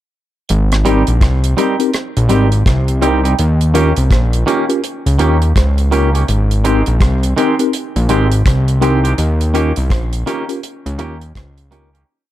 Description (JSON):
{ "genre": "lovers rock reggae", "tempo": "83 BPM", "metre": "4/4", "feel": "swing 62% on 16ths", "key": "Ab major", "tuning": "A4 = 441 Hz", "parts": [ { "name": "fat analog bass", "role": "bass", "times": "0.5-12.0 s", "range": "Ab1 to Eb2", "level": "-13 LUFS", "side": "equal", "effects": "none" }, { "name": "deep reggae drum kit", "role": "drums", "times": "0.5-12.1 s", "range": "hi-hat, kick drum, rim click", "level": "-18 LUFS", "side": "equal", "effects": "none" }, { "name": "twangy electric guitar", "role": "stabs", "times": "0.8-12.0 s", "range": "Eb3 to G4", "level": "-20 LUFS", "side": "right 4 dB", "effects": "none" }, { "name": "mellow tine electric piano", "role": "accompaniment", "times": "0.9-12.0 s", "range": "C4 to Bb4", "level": "-19 LUFS", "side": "left 3 dB", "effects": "medium stereo tremolo" } ], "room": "light reverb, studio ambience", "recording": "dark, warm production", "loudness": "-12 LUFS", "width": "side -13 dB against mid", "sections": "0.5-12.1 verse", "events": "fade-out 9.2-12.1", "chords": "0.5 Abmaj7; 3.4 Eb7; 6.3 Abmaj7; 9.2 Eb7" }